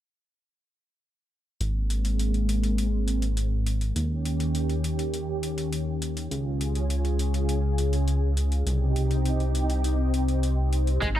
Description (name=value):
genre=synthwave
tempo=102 BPM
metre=4/4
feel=straight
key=Ab major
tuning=A4 = 440 Hz
part: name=analog string pad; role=sustained chords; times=1.6-11.2 s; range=C3 to Ab4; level=-29 LUFS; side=left 1 dB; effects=ensemble chorus, sidechain pumping
part: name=chorused synth bass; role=bass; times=1.6-11.2 s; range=Ab1 to Eb2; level=-25 LUFS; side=equal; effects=tube saturation
part: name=electronic hi-hat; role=drums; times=1.6-11.1 s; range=none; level=-37 LUFS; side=left 1 dB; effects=none
part: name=overdriven electric guitar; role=riff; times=11.0-11.2 s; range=Ab3 to Eb4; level=-26 LUFS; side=right 2 dB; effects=analog chorus
part: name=electronic kick drum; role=drums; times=11.0-11.1 s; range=none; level=-28 LUFS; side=equal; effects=none
room=light reverb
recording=none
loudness=-24 LUFS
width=side -12 dB against mid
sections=1.6-11.2 A section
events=filter sweep on analog synth bass 1.6-11.2; filter sweep on analog synth pad 1.6-11.2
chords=1.6 Abadd9; 4.0 Eb7; 6.3 Db; 8.7 Cm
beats=| 1.61 2.19 2.78 3.37 | 3.96 4.55 5.14 5.72 | 6.31 6.90 7.49 8.08 | 8.67 9.25 9.84 10.43 | 11.02